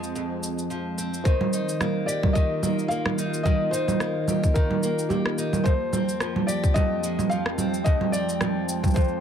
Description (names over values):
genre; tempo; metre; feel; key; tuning
folktronica; 109 BPM; 4/4; swing 56% on 16ths; Eb major; A4 = 440 Hz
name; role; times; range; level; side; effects
felt-muted upright piano; melody; 0.0-9.2 s; G4 to F5; -29 LUFS; left 2 dB; ping-pong delay
warbly tape-like pad; sustained chords; 0.0-9.2 s; Eb3 to G5; -31 LUFS; right 1 dB; chorus, built-in reverb
picked old ladder-braced acoustic guitar; arpeggios; 0.0-9.2 s; F2 to G4; -30 LUFS; left 2 dB; ping-pong delay
electronic shaker, congas and rim click; drums; 0.0-9.1 s; none; -26 LUFS; right 4 dB; none
electronic kick drum; drums; 1.3-9.1 s; none; -21 LUFS; equal; none
room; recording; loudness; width
light reverb, digital ambience; none; -22 LUFS; side -8 dB against mid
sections
0.0-1.3 A section; 1.3-9.2 B section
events
none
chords
0.0 Fmadd9; 1.3 Eb; 5.7 Fmadd9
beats
0.15 0.70 | 1.25 1.80 2.35 2.91 | 3.46 4.01 4.56 5.11 | 5.66 6.21 6.76 7.31 | 7.86 8.41 8.96